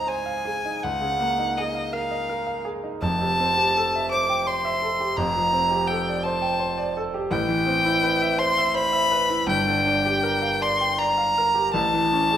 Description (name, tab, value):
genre	classical, impressionist duo for violin and grand piano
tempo	83 BPM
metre	3/4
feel	uneven beats, rubato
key	unclear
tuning	A4 = 440 Hz
part	rich violin	melody	0.0-12.4 s	Eb5 to D6	-22 LUFS	left 1 dB	none
part	clear concert grand piano	accompaniment	0.0-12.4 s	F1 to G5	-25 LUFS	right 1 dB	none
room	wet recital hall reverb, RT60 1.5 s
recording	none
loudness	-20 LUFS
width	side -10 dB against mid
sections	0.0-12.4 A section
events	none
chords	0.0 Dbmaj9; 0.8 Ebm11/Db; 3.0 Fmaj9; 5.2 Gm11/F; 7.3 Am9; 9.5 Gm7; 11.7 A